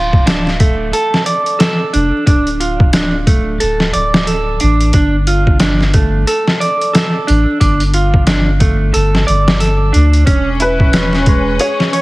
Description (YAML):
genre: trip hop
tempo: 90 BPM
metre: 4/4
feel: swing 59% on 16ths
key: D harmonic minor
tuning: A4 = 440 Hz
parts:
  - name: clean electric guitar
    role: arpeggios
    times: 0.0-12.0 s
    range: G#3 to D5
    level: -16 LUFS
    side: right 2 dB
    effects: tape echo
  - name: soft dub sub bass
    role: bass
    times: 0.0-11.6 s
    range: D1 to D2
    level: -15 LUFS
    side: equal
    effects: none
  - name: trip hop sampler-style drum kit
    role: drums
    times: 0.1-12.0 s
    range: hi-hat, kick drum, snare drum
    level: -13 LUFS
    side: equal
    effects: none
  - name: bright symphonic string section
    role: sustained chords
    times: 10.3-12.0 s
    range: C#4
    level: -19 LUFS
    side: left 2 dB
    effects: vintage 12-bit sampler grit
  - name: felt-muted upright piano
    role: melody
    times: 10.6-12.0 s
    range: B4 to C#5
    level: -17 LUFS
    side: left 1 dB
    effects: none
room: light reverb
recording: heavily compressed radio sound, vinyl crackle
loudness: -10 LUFS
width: side -20 dB against mid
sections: 0.0-12.0 A section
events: none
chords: 0.0 Dm; 4.9 Gsus2; 10.3 E